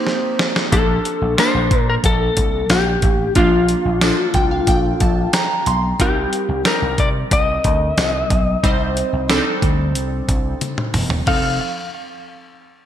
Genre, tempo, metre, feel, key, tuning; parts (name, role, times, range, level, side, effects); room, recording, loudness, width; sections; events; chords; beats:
1980s-style pop; 91 BPM; 4/4; straight; A4 = 440 Hz
glassy digital keys; accompaniment; 0.0-11.6 s; F3 to C6; -22 LUFS; right 2 dB; chorus
dusty soul sampler-style drum kit; drums; 0.1-11.4 s; crash cymbal, hi-hat, kick drum, snare drum, tambourine, toms; -19 LUFS; equal; gated reverb
lightly driven lead guitar; melody; 0.7-11.6 s; F4 to F5; -20 LUFS; left 3 dB; ping-pong delay
vintage slap bass; bass; 0.7-11.6 s; E1 to C3; -21 LUFS; equal
moderate plate reverb, RT60 2.1 s; bright 1980s-style digital production; -15 LUFS; side -10 dB against mid
0.7-11.3 A section; 11.3-12.9 B section
band accent 0.0-0.7; drum fill 0.1-0.7, 10.6-11.3; synth keys fill 4.0-6.0
0.0 Cm7; 0.7 Bbmaj7; 6.0 Cm7; 11.3 F7
0.06 | 0.72 1.38 2.04 2.70 | 3.36 4.02 4.68 5.34 | 6.00 6.66 7.32 7.98 | 8.64 9.29 9.95 10.61 | 11.27